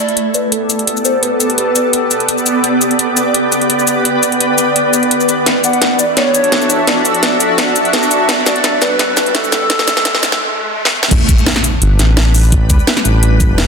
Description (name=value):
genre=liquid drum and bass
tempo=170 BPM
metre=4/4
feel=swing 53% on 16ths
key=unclear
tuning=A4 = 441 Hz
part: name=hollow clarinet-like synth lead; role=melody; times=0.0-2.3, 5.6-10.7 s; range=A4 to F#5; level=-18 LUFS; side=equal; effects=wide subtle chorus, tape echo
part: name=shimmering ambient pad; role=sustained chords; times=0.0-13.7 s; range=G3 to E5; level=-15 LUFS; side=equal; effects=chorus, built-in reverb, sidechain pumping
part: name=riser and impact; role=sound effects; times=0.0-12.5 s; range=none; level=-24 LUFS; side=equal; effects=none
part: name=drum and bass drum kit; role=drums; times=0.1-13.7 s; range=crash cymbal, hi-hat, shaker, snare drum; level=-14 LUFS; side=equal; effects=none
part: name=smooth synth bass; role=bass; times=11.1-13.7 s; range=E1 to D2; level=-11 LUFS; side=equal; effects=none
part: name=electronic kick drum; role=drums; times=11.1-13.5 s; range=none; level=-12 LUFS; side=equal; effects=none
room=wet recital hall reverb, RT60 1.6 s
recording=dense, heavily limited modern master, high-pass filter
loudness=-10 LUFS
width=side -5 dB against mid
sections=0.0-11.1 A section; 11.1-13.7 B section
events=build-up 0.0-11.1; riser 0.0-11.1; filter sweep on ambient pad 0.0-11.1; drum fill 5.5-10.4, 10.8; break 10.4-11.1; drop 11.1-13.7; impact 11.1-12.5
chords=0.0 A9sus4; 5.5 E9sus4; 11.1 A9sus4